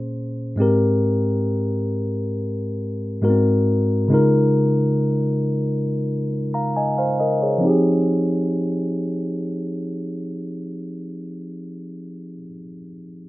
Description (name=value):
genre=R&B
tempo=68 BPM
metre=4/4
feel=straight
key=F minor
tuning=A4 = 440 Hz
part: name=mellow tine electric piano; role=accompaniment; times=0.0-13.3 s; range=Ab2 to Bb5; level=-19 LUFS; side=equal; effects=none
room=light reverb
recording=rough home demo mix, low-pass filter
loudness=-18 LUFS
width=side -17 dB against mid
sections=0.0-7.6 A section; 7.6-11.2 B section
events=filter sweep 0.0-7.6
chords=0.0 Bbm9; 0.6 Abmaj7; 3.2 Ab7; 4.1 Db6; 7.6 Fm9